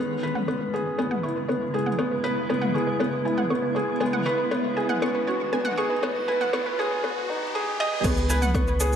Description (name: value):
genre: piano and strings electronica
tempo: 119 BPM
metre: 4/4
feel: straight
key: C# minor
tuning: A4 = 439 Hz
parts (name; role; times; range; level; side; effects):
- granular cloud pad; sustained chords; 0.0-9.0 s; C#3 to F#4; -31 LUFS; left 1 dB; built-in reverb, sidechain pumping
- analog pluck; arpeggios; 0.0-8.9 s; B4 to C#6; -33 LUFS; right 2 dB; chorus, sidechain pumping, digital delay
- felt-muted upright piano; riff; 0.0-9.0 s; B3 to D#5; -25 LUFS; equal; digital delay
- round analog bass; bass; 0.0-9.0 s; C#2 to D#2; -25 LUFS; equal; sidechain pumping, high-pass filter
- riser; sound effects; 2.3-8.0 s; none; -36 LUFS; right 1 dB; none
- deep house drum kit; drums; 0.4-9.0 s; crash cymbal, shaker, toms; -32 LUFS; right 1 dB; overdrive
- electronic kick drum; drums; 8.0-8.6 s; none; -26 LUFS; equal; overdrive
room: moderate lush hall reverb, RT60 1.7 s, digital ambience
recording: high-pass filter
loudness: -23 LUFS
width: side -8 dB against mid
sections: 0.0-8.0 A section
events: build-up 0.0-8.0; filter sweep on synth arpeggio sound 0.0-8.0; filter sweep 0.0-8.0; riser 2.3-8.0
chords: 0.0 C#m7; 4.0 G#m7; 8.0 C#m7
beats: 0.48 0.98 1.49 | 1.99 2.50 3.00 3.50 | 4.01 4.51 5.02 5.52 | 6.03 6.53 7.04 7.54 | 8.04 8.55